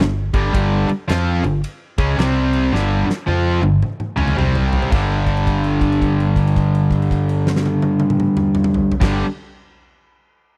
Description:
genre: blues rock power trio and southern rock.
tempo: 110 BPM.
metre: 4/4.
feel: swing 63% on 8ths.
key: unclear.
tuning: A4 = 440 Hz.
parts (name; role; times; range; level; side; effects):
cranked stack guitar; riff; 0.0-9.2 s; G2 to F4; -19 LUFS; equal; overdrive.
vintage muted fingered electric bass; bass; 0.0-9.2 s; G1 to F2; -23 LUFS; equal; none.
huge arena drum kit; drums; 0.0-9.1 s; crash cymbal, kick drum, ride cymbal, snare drum, toms; -24 LUFS; equal; none.
room: small room ambience.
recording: dry, close 1970s-style studio recording.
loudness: -18 LUFS.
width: mono.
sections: 0.0-4.9 A section; 4.9-9.3 B section.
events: drum fill 2.7-4.9; held note 4.9-9.0.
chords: 0.0 G5; 2.2 C5; 2.7 G5; 4.4 C5; 4.9 G5.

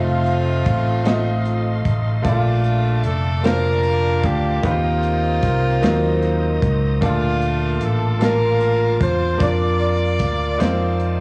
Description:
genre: slow gospel.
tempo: 50 BPM (dotted quarters).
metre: 6/8.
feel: straight.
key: Bb major.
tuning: A4 = 441 Hz.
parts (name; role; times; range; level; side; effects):
warm horn section; melody; 0.0-11.2 s; A3 to D5; -24 LUFS; equal; plate reverb.
bright grand piano; accompaniment; 0.0-11.2 s; Bb2 to A5; -28 LUFS; equal; cassette tape, plate reverb.
bright tonewheel organ; sustained chords; 0.0-11.2 s; F4 to Eb6; -35 LUFS; equal; fast rotary speaker, cassette tape, plate reverb.
fingered electric bass; bass; 0.0-11.2 s; F1 to F2; -22 LUFS; equal; none.
modern studio drum kit; drums; 0.3-11.2 s; hi-hat, kick drum, snare drum; -26 LUFS; equal; cassette tape.
room: light reverb.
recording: home recording on cassette, small room ambience.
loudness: -19 LUFS.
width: mono.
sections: 0.0-11.2 A section.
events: none.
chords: 0.0 F7; 2.3 Bbmaj7; 4.6 Eb6; 5.8 Ebm6; 7.0 Bbmaj7; 9.4 Bb/F; 10.6 F7.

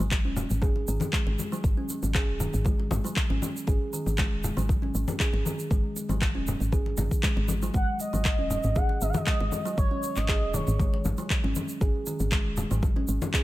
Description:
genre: afro house.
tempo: 118 BPM.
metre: 4/4.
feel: straight.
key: unclear.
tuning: A4 = 440 Hz.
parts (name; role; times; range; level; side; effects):
kalimba; arpeggios; 0.0-13.4 s; D#3 to G#4; -33 LUFS; right 1 dB; sidechain pumping, digital delay.
woody FM bass; bass; 0.0-13.2 s; D#1 to G#1; -29 LUFS; equal; sidechain pumping.
congas; percussion; 0.0-13.3 s; none; -34 LUFS; left 3 dB; none.
egg shaker; percussion; 0.0-13.4 s; none; -40 LUFS; right 4 dB; none.
afro-pop drum kit; drums; 0.1-13.4 s; handclaps, toms; -32 LUFS; equal; none.
electronic kick drum; drums; 0.1-13.4 s; none; -26 LUFS; equal; none.
expressive synth lead; melody; 7.8-11.0 s; C#5 to F#5; -32 LUFS; right 1 dB; lush chorus, digital delay.
room: little or no reverb.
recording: none.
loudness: -24 LUFS.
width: side -16 dB against mid.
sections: 0.0-13.4 A section.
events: none.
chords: 0.0 G#5.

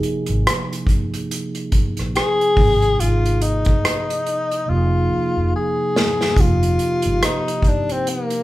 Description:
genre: R&B, neo-soul.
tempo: 71 BPM.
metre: 4/4.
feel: swing 58% on 16ths.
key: F minor.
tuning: A4 = 441 Hz.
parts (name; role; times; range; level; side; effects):
mellow tine electric piano; accompaniment; 0.0-8.4 s; C3 to Ab4; -25 LUFS; right 2 dB; phaser.
unplugged drum kit; drums; 0.0-8.4 s; hi-hat, kick drum, rim click, snare drum; -20 LUFS; equal; none.
vintage muted fingered electric bass; bass; 0.3-7.2 s; F1 to Bb1; -21 LUFS; equal; none.
breathy tenor saxophone; melody; 2.2-8.4 s; Bb3 to Ab4; -20 LUFS; left 2 dB; none.
room: light reverb.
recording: band playing live in one room.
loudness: -16 LUFS.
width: side -16 dB against mid.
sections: 0.0-6.4 A section; 6.4-8.4 A section.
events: drum fill 4.7-6.4.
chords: 0.0 Gb69 (rootless); 4.7 Fm7; 6.4 F9sus4.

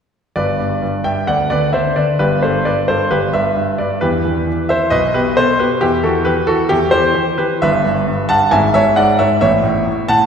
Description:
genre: classical-period piano sonatina.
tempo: 133 BPM.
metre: 4/4.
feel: rubato.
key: G major.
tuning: A4 = 441 Hz.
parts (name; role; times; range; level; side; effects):
clear concert grand piano; solo; 0.4-10.3 s; G1 to A5; -13 LUFS; equal; none.
room: wet scoring stage reverb, RT60 2.1 s.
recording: recorded in a church or concert hall.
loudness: -13 LUFS.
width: side -7 dB against mid.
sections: 0.4-10.3 A section.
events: none.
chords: 0.4 G; 1.3 D13; 2.2 G; 4.0 Em; 4.9 B7b9b13; 5.8 Em; 7.6 Em/G; 8.5 E7/G#; 9.4 A.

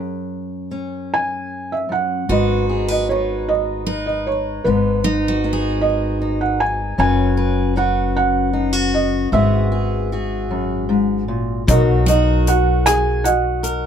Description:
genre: acoustic folk-pop ballad.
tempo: 51 BPM (dotted quarters).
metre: 6/8.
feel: straight.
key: B major.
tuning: A4 = 435 Hz.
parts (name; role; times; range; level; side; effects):
fingerpicked steel-string acoustic guitar; accompaniment; 0.0-13.9 s; F#2 to B4; -22 LUFS; left 2 dB; none.
felt-muted upright piano; melody; 1.1-13.9 s; D#4 to G#5; -20 LUFS; right 2 dB; none.
picked steel-string acoustic guitar; arpeggios; 2.3-7.0, 12.1-13.6 s; D#4 to B4; -24 LUFS; right 3 dB; none.
upright bass; bass; 2.3-13.9 s; F#1 to B1; -21 LUFS; equal; none.
natural country drum kit; drums; 11.7-13.8 s; hi-hat, kick drum, rim click; -20 LUFS; left 1 dB; none.
room: light reverb.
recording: close, detailed microphones.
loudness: -16 LUFS.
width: side -8 dB against mid.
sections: 0.0-2.3 A section; 2.3-11.7 B section; 11.7-13.9 C section.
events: none.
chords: 0.0 F#sus2; 2.3 G#m; 7.0 Bsus2/F#; 9.3 Eadd9/G#; 11.7 Bmaj7.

